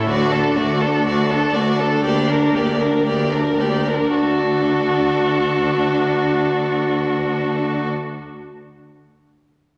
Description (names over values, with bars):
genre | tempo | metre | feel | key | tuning
quick classical-period movement for string quartet | 106-125 BPM | 4/4 | rubato | D major | A4 = 440 Hz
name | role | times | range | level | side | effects
clear violin | melody | 0.0-7.9 s | A4 to D5 | -29 LUFS | equal | none
rich violin | second line | 0.0-7.9 s | F#4 to Bb4 | -23 LUFS | equal | none
rich viola | accompaniment | 0.0-7.9 s | A3 to D4 | -23 LUFS | equal | none
rich cello | bass | 0.0-7.9 s | D2 | -26 LUFS | equal | none
room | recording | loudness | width
wet scoring stage reverb, RT60 2.0 s | none | -19 LUFS | mono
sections
0.0-4.1 A section; 4.1-8.4 B section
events
slowing down 0.0-4.1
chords
0.1 D; 2.0 Gm/D; 4.1 D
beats
| 0.09 0.57 1.06 1.55 | 2.05 2.55 3.06 3.59 | 4.14 4.68 5.21 5.74 | 6.27 6.81 7.34